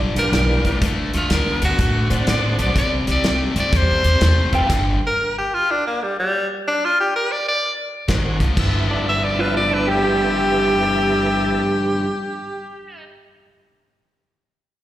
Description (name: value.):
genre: electric blues shuffle.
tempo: 124 BPM.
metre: 4/4.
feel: swing 65% on 8ths.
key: G mixolydian.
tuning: A4 = 440 Hz.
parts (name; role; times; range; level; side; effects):
cranked stack guitar; riff; 0.0-5.0, 8.1-12.1 s; G2 to E4; -23 LUFS; left 2 dB; overdrive, slapback echo.
upright bass; bass; 0.0-5.0, 8.1-11.6 s; F1 to A2; -21 LUFS; equal; none.
edgy tenor saxophone; melody; 0.2-12.9 s; G3 to E5; -20 LUFS; left 1 dB; slapback echo.
tonewheel organ; accompaniment; 0.2-4.7, 8.1-11.6 s; Bb3 to A4; -26 LUFS; right 5 dB; slow rotary speaker, chorus vibrato, slapback echo.
natural country drum kit; drums; 0.2-4.8, 8.1-8.7 s; crash cymbal, hi-hat, kick drum, snare drum; -23 LUFS; equal; none.
electric slide guitar; second line; 4.5-4.7, 8.9-13.0 s; D4 to G5; -24 LUFS; right 2 dB; slapback echo.
room: light reverb.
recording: live gig heard through the venue's PA, recital hall reverb.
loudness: -16 LUFS.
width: side -13 dB against mid.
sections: 0.0-8.6 A section; 8.6-12.4 B section.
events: stop 4.7-8.1.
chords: 0.0 G7; 0.8 D7; 2.8 C; 4.7 G5; 8.1 Ab9; 8.6 G13.